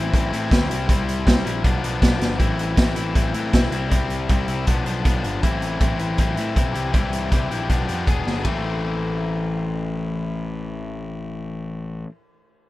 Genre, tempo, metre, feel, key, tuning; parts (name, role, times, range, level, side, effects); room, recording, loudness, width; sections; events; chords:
indie rock; 158 BPM; 4/4; straight; A minor; A4 = 441 Hz
overdriven semi-hollow guitar; riff; 0.0-12.1 s; E3 to G#4; -26 LUFS; left 4 dB
fuzz picked electric bass; bass; 0.0-12.0 s; E1 to A2; -26 LUFS; equal; overdrive
raw garage drum kit; drums; 0.1-8.5 s; hi-hat, kick drum, ride cymbal, snare drum; -20 LUFS; equal
studio ambience; rough home demo mix; -19 LUFS; side -17 dB against mid
0.0-8.5 A section; 8.5-11.5 B section
drum fill 8.3
0.0 Am; 0.7 C; 1.6 G7/B; 2.4 Am; 3.7 C; 4.7 G7/B; 5.4 Am; 6.8 C; 7.7 G7/B; 8.1 E5; 8.5 Am